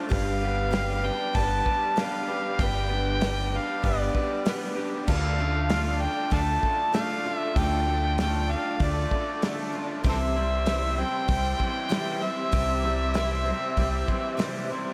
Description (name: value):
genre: folk rock and heartland rock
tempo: 97 BPM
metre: 4/4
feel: straight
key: D dorian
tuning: A4 = 440 Hz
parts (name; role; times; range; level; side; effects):
- picked steel-string acoustic guitar; accompaniment; 0.0-14.9 s; C3 to C5; -35 LUFS; equal; ensemble chorus
- mellow tonewheel organ; sustained chords; 0.0-14.9 s; F4 to D6; -40 LUFS; equal; slow rotary speaker
- raw garage guitar; riff; 0.0-14.9 s; G2 to G4; -37 LUFS; equal; overdrive
- overdriven harmonica; melody; 0.1-14.4 s; A4 to A5; -31 LUFS; equal; diffuse ambient delay
- deep dub fingered electric bass; bass; 0.1-14.0 s; G1 to D2; -30 LUFS; equal; none
- damped 70s drum kit; drums; 0.1-14.5 s; crash cymbal, hi-hat, kick drum, snare drum; -33 LUFS; equal; none
room: moderate lush hall reverb, RT60 1.8 s, studio ambience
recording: dreamy mix soaked in reverb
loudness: -26 LUFS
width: mono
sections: 0.0-14.9 A section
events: none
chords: 0.1 G; 5.1 Dm; 10.1 C